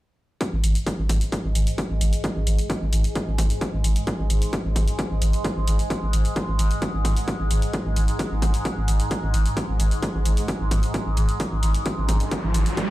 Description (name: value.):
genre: driving peak-time techno.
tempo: 131 BPM.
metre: 4/4.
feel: straight.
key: unclear.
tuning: A4 = 441 Hz.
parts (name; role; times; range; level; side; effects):
overtone-sweeping drone; drone; 0.8-12.9 s; G#2 to G#3; -30 LUFS; equal; chorus, built-in reverb, phaser, sidechain pumping.
electronic hi-hat; drums; 0.4-12.9 s; none; -34 LUFS; equal; overdrive.
electronic kick drum; drums; 0.4-12.9 s; none; -27 LUFS; equal; overdrive, high-pass filter on kick.
saturated sub bass; bass; 0.5-12.7 s; G#1; -22 LUFS; equal; overdrive, sidechain pumping, low-pass filter.
riser; sound effects; 11.9-12.9 s; none; -29 LUFS; right 2 dB; none.
room: little or no reverb.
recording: played on a big sound system in a bare room, large studio reverb.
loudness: -21 LUFS.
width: side -16 dB against mid.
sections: 0.4-12.9 A section.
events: riser 11.9-12.9.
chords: none.